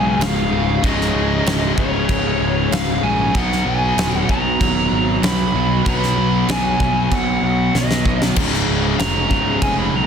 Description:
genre	hard rock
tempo	96 BPM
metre	4/4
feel	straight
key	unclear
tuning	A4 = 440 Hz
part	lead guitar through a small cranked amp	melody	0.0-10.1 s	Db5 to Cb6	-22 LUFS	right 1 dB	overdrive
part	chorused pulse-width pad	sustained chords	0.0-10.1 s	Cb4 to Eb5	-31 LUFS	right 1 dB	plate reverb
part	biting overdriven guitar	riff	0.0-10.1 s	Db2 to Cb4	-23 LUFS	left 11 dB	none
part	cranked stack guitar	riff	0.0-10.1 s	Db2 to Cb4	-25 LUFS	right 12 dB	overdrive, spring reverb
part	high-gain distorted guitar	riff	0.0-10.1 s	Db2 to Cb4	-26 LUFS	equal	distortion
part	fuzz picked electric bass	bass	0.0-10.1 s	Db1 to Cb2	-22 LUFS	equal	overdrive
part	huge arena drum kit	drums	0.2-9.8 s	crash cymbal, kick drum, snare drum	-22 LUFS	equal	none
room	light reverb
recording	dense, heavily limited modern master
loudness	-15 LUFS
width	side -7 dB against mid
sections	0.0-10.1 A section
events	drum fill 7.7-8.4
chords	0.0 Db; 3.4 Cb5; 8.4 Db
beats	0.21 | 0.84 1.47 2.09 2.72 | 3.35 3.98 4.60 5.23 | 5.86 6.49 7.11 7.74 | 8.37 8.99 9.62

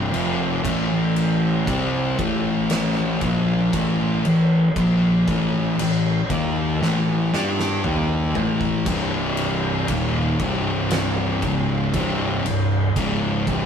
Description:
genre	stoner and doom metal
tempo	58 BPM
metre	4/4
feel	straight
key	unclear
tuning	A4 = 441 Hz
part	thick fuzz guitar	riff	0.0-13.7 s	C2 to G4	-21 LUFS	left 3 dB	distortion
part	thick fuzz guitar	riff	0.0-13.7 s	C2 to G4	-26 LUFS	right 8 dB	distortion
part	fuzz fingered electric bass	bass	0.0-13.7 s	C1 to G2	-29 LUFS	right 2 dB	overdrive
part	oversized low-tuned drum kit	drums	0.1-13.7 s	crash cymbal, kick drum, snare drum, toms	-27 LUFS	equal	none
room	light reverb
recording	rough rehearsal-room recording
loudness	-19 LUFS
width	side -7 dB against mid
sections	0.0-13.7 A section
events	drum fill 6.8-8.9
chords	0.0 C5; 0.6 A5; 8.9 Cm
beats	| 0.65 1.68 2.71 3.74 | 4.76 5.79 6.82 7.84 | 8.87 9.89 10.92 11.94 | 12.97

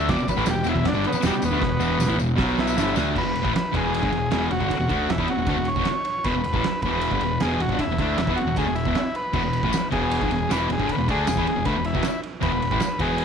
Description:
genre	garage rock duo or trio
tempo	156 BPM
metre	4/4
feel	straight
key	E mixolydian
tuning	A4 = 440 Hz
part	combo organ	melody	0.0-13.2 s	G3 to D5	-27 LUFS	equal	none
part	thick fuzz guitar	riff	0.0-13.2 s	E2 to D4	-24 LUFS	left 1 dB	distortion
part	growling picked electric bass	bass	0.0-13.2 s	E1 to E2	-29 LUFS	equal	overdrive
part	oversized low-tuned drum kit	drums	0.1-13.2 s	crash cymbal, kick drum, ride cymbal, snare drum	-28 LUFS	right 3 dB	none
part	tambourine	percussion	0.1-3.1, 9.7-12.9 s	none	-38 LUFS	left 15 dB	none
room	studio ambience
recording	1960s-style stereo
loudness	-20 LUFS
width	side -7 dB against mid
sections	0.0-3.2 A section; 3.2-13.2 B section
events	transistor combo organ solo 0.0-3.2; drum fill 1.6-3.2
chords	0.0 E5; 2.4 B5; 2.8 Gsus2; 3.2 E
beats	| 0.10 0.48 0.87 1.25 | 1.63 2.01 2.40 2.78 | 3.16 3.55 3.93 4.32 | 4.71 5.09 5.48 5.86 | 6.25 6.64 7.02 7.41 | 7.79 8.18 8.57 8.95 | 9.34 9.72 10.11 10.50 | 10.88 11.27 11.65 12.04 | 12.42 12.81 13.19

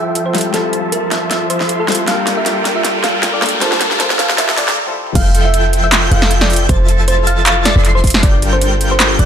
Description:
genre	future bass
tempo	156 BPM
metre	4/4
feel	swing 54% on 16ths, half-time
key	F major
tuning	A4 = 438 Hz
part	thumb-piano-like synth pluck	melody	0.0-9.3 s	A4 to F5	-20 LUFS	right 1 dB	chorus, sidechain pumping, tape echo
part	felt-muted upright piano	accompaniment	0.0-5.2 s	G3 to A5	-23 LUFS	left 5 dB	sidechain pumping, tape echo
part	supersaw chords	riff	0.0-9.3 s	F3 to C6	-19 LUFS	equal	sidechain pumping, low-pass filter
part	riser	sound effects	0.9-4.8 s	none	-23 LUFS	equal	none
part	big-room dance drum kit	drums	0.2-9.3 s	crash cymbal, handclaps, hi-hat, snare drum, toms	-16 LUFS	equal	overdrive, high-pass filter on snare, high-pass filter on toms, high-pass filter on hats, high-pass filter on cymbals
part	airy dreamy lead	arpeggios	5.2-9.3 s	G6 to C7	-22 LUFS	equal	chorus, phaser, sidechain pumping
part	concert harp	arpeggios	5.2-9.3 s	D4 to C5	-25 LUFS	left 7 dB	sidechain pumping, tape echo
part	warm 808-style bass	bass	5.2-9.3 s	F1 to G1	-14 LUFS	equal	tube saturation, sidechain pumping
part	electronic kick drum	drums	5.2-8.3 s	none	-14 LUFS	equal	none
room	light reverb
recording	high-pass filter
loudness	-11 LUFS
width	side -8 dB against mid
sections	0.0-5.2 A section; 5.2-9.3 B section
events	build-up 0.0-5.2; drum fill 0.0-4.8, 4.9; filter sweep on supersaw synth 0.0-5.2; filter sweep 0.0-5.2; riser 0.9-4.8; break 4.8-5.2; drop 5.2-9.3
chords	0.0 Fmaj7; 2.1 Gm9; 5.0 Fmaj7; 8.2 Gm9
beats	0.15 | 0.54 0.92 1.31 1.69 | 2.08 2.46 2.85 3.23 | 3.62 4.00 4.38 4.77 | 5.15 5.54 5.92 6.31 | 6.69 7.08 7.46 7.85 | 8.23 8.62 9.00

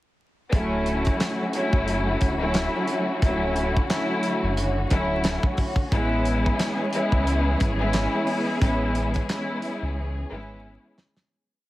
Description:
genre	hip hop, boom-bap hip-hop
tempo	89 BPM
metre	4/4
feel	swing 56% on 16ths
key	A major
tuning	A4 = 440 Hz
part	dark symphonic string section	accompaniment	0.5-10.9 s	F#3 to E4	-25 LUFS	left 1 dB	high-pass filter, low-pass filter
part	warm studio string section	stabs	0.5-11.3 s	D3 to G#4	-31 LUFS	equal	high-pass filter, low-pass filter, ping-pong delay
part	sub bass with octave	bass	0.5-10.8 s	D1 to C#2	-27 LUFS	equal	none
part	warm soul drum kit	drums	0.5-11.3 s	handclaps, hi-hat, kick drum, snare drum	-25 LUFS	equal	none
room	light reverb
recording	heavily compressed radio sound, multiband compression, vinyl crackle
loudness	-21 LUFS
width	side -16 dB against mid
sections	0.5-11.3 verse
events	fade-out 8.6-11.3; drum fill 10.0-11.3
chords	0.5 Dmaj7; 5.9 Amaj7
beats	| 0.53 1.20 1.88 2.55 | 3.22 3.90 4.57 5.25 | 5.92 6.59 7.27 7.94 | 8.62 9.29 9.96 10.64

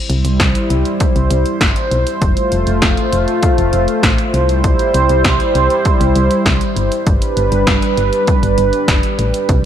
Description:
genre	synth-pop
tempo	99 BPM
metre	4/4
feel	straight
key	C major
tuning	A4 = 440 Hz
part	warm analog pad	sustained chords	0.0-9.7 s	G3 to C5	-15 LUFS	right 1 dB	chorus
part	solid FM bass	bass	0.1-9.6 s	F1 to C2	-17 LUFS	equal	none
part	punchy analog drum machine	drums	0.1-9.6 s	hi-hat, kick drum, snare drum	-16 LUFS	equal	none
room	moderate plate reverb, RT60 2.1 s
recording	dreamy mix soaked in reverb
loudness	-12 LUFS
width	side -10 dB against mid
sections	0.0-9.7 A section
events	none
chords	0.0 C; 2.2 F; 4.3 C; 7.1 G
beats	0.40 1.00 1.61 | 2.22 2.82 3.43 4.04 | 4.64 5.25 5.85 6.46 | 7.07 7.67 8.28 8.88 | 9.49

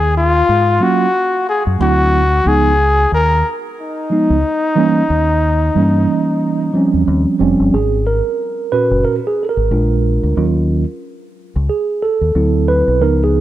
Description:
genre	hip hop, jazz-hop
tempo	91 BPM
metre	4/4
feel	swing 58% on 16ths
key	unclear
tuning	A4 = 440 Hz
part	warm flugelhorn	melody	0.0-7.1 s	Eb4 to Bb4	-15 LUFS	left 2 dB	slapback echo
part	deep dub fingered electric bass	bass	0.0-13.4 s	F1 to Ab2	-16 LUFS	left 1 dB	none
part	mellow tine electric piano	accompaniment	0.8-13.4 s	Bb2 to Cb5	-15 LUFS	right 3 dB	slow stereo tremolo
room	light reverb, small room ambience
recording	dark, warm production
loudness	-12 LUFS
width	side -13 dB against mid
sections	0.0-7.7 A section; 7.7-13.4 B section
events	tine electric piano solo 7.7-13.4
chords	0.0 Ebm9; 1.8 D9; 2.5 Db9; 5.1 Eb7b9; 7.1 Eb13; 7.7 Ab7sus4; 9.7 Bb7; 10.4 Ebm9; 12.4 D9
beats	0.49 1.15 1.81 | 2.47 3.12 3.78 4.44 | 5.10 5.76 6.42 7.08 | 7.74 8.40 9.06 9.72 | 10.38 11.04 11.70 12.36 | 13.02

